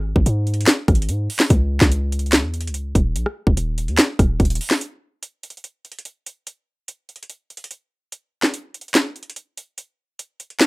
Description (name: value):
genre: hip hop, trap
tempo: 145 BPM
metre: 4/4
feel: half-time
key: unclear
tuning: A4 = 440 Hz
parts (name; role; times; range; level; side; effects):
- warm 808-style bass; bass; 0.0-4.6 s; D#1 to G#2; -21 LUFS; equal; none
- trap drum kit; drums; 0.2-10.7 s; handclaps, hi-hat, kick drum, rim click, snare drum; -17 LUFS; equal; none
room: little or no reverb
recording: rough home demo mix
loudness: -17 LUFS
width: side -25 dB against mid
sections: 0.0-4.8 A section; 4.8-10.7 B section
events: none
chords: none